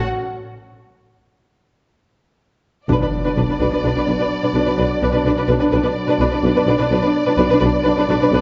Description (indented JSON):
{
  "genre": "cinematic, epic orchestral film score",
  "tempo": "85 BPM (dotted quarters)",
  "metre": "12/8",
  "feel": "straight",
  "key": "B minor",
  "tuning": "A4 = 442 Hz",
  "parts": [
    { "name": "warm symphonic violin section", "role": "melody", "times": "0.0-8.4 s", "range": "D5", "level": "-28 LUFS", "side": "equal", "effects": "none" },
    { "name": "rich symphonic cello section", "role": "bass", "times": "0.0-8.4 s", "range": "B2", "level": "-30 LUFS", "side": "equal", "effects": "none" },
    { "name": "warm symphonic violin section", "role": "second line", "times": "2.9-8.4 s", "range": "B4", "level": "-24 LUFS", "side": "equal", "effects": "none" },
    { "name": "warm symphonic viola section", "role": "accompaniment", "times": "2.9-8.4 s", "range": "D4", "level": "-24 LUFS", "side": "equal", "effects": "none" },
    { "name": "bright trombone section", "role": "sustained chords", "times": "2.9-8.4 s", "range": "F#3 to D4", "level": "-26 LUFS", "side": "equal", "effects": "none" },
    { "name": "rich symphonic double bass section", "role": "bass", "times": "2.9-8.4 s", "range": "B1", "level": "-26 LUFS", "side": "equal", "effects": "none" },
    { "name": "warm tuba", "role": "bass", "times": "2.9-8.4 s", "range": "B1", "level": "-25 LUFS", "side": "equal", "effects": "none" },
    { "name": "taiko ensemble", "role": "drums", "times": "2.9-4.2 s", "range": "none", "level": "-39 LUFS", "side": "equal", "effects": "none" },
    { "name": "impact", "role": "sound effects", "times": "2.9-5.7 s", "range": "none", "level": "-30 LUFS", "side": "equal", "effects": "none" }
  ],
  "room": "wet scoring stage reverb, RT60 1.6 s",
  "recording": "nothing above 7.7 kHz",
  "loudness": "-18 LUFS",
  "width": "mono",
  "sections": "0.0-2.9 A section; 2.9-8.4 B section",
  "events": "break 0.1-2.9; drum fill 2.2-2.9; impact 2.9-5.7",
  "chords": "0.1 N.C.; 2.9 Bm",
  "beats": "| 0.06 0.77 1.47 2.18 | 2.89 3.60 4.31 5.02 | 5.72 6.43 7.14 7.85"
}